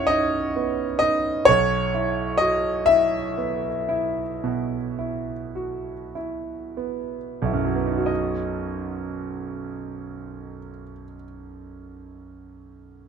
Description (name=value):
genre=classical, romantic nocturne for solo piano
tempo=28-44 BPM (dotted quarters)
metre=12/8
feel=rubato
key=B major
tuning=A4 = 440 Hz
part: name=clear concert grand piano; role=solo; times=0.0-13.1 s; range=B1 to F#5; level=-22 LUFS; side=right 1 dB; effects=none
room=light reverb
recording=close, detailed microphones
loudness=-22 LUFS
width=side -7 dB against mid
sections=0.0-8.1 A section; 8.1-13.1 B section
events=slowing down 0.0-8.1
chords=0.0 B